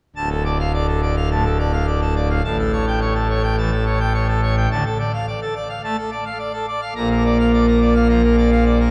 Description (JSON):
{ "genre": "classical, organ toccata", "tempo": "106 BPM", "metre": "4/4", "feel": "straight", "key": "D minor", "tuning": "A4 = 440 Hz", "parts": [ { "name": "pipe organ, full organ", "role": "solo", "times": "0.2-8.9 s", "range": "D1 to Bb5", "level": "-19 LUFS", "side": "equal", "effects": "none" } ], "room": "wet cathedral reverb, RT60 4.1 s", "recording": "dark, warm production", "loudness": "-19 LUFS", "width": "mono", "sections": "0.2-8.9 A section", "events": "none", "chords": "0.2 Dm; 2.4 A7; 4.7 Dm; 7.0 Bb", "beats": "| 0.16 0.73 1.31 1.88 | 2.45 3.01 3.58 4.14 | 4.71 5.27 5.84 6.40 | 6.96 7.53 8.09 8.65" }